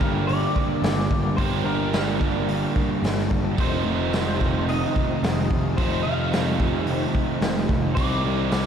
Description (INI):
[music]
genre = rock, shoegaze and dream pop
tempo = 109 BPM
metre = 4/4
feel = straight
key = unclear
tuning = A4 = 441 Hz
[part]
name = electric guitar through a small old amp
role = melody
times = 0.0-8.7 s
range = Bb4 to F5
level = -31 LUFS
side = left 1 dB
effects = analog chorus, ping-pong delay
[part]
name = string machine, cellos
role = sustained chords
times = 0.0-8.7 s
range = D4 to A5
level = -33 LUFS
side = left 1 dB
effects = ensemble chorus
[part]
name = biting overdriven guitar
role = riff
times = 0.0-8.7 s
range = F2 to G4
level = -26 LUFS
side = right 9 dB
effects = reverse reverb
[part]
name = thick fuzz guitar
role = riff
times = 0.0-8.7 s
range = F2 to C4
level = -29 LUFS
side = left 9 dB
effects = distortion, ensemble chorus
[part]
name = fuzz picked electric bass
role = bass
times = 0.0-8.7 s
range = F1 to C2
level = -27 LUFS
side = equal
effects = overdrive
[part]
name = raw garage drum kit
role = drums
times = 0.0-8.7 s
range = hi-hat, kick drum, snare drum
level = -26 LUFS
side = equal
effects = none
[sound]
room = moderate plate reverb, RT60 2.9 s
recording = dreamy mix soaked in reverb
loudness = -20 LUFS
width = side -8 dB against mid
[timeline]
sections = 0.0-8.7 A section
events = none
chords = 0.0 Gmadd9; 3.6 F7; 8.0 Cmadd9